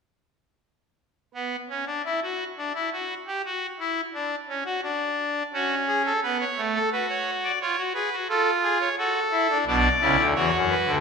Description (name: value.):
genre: classical, baroque-style 3-part fugue for pipe organ.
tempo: 86 BPM.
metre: 3/4.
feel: straight.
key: B minor.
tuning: A4 = 439 Hz.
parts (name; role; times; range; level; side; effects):
pipe organ, trumpet; solo; 1.3-11.0 s; B1 to D5; -22 LUFS; equal; none.
room: wet scoring stage reverb, RT60 1.8 s.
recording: minimal, uncompressed stereo recording.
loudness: -22 LUFS.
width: side -5 dB against mid.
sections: 1.3-11.0 A section.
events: none.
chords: 1.3 N.C.; 5.5 F#m/C#; 6.9 Bmadd9/F#; 7.6 C#/E#; 9.0 F#m; 9.7 Bm.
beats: | 1.34 2.04 2.74 | 3.44 4.13 4.83 | 5.53 6.22 6.91 | 7.60 8.29 8.98 | 9.68 10.37.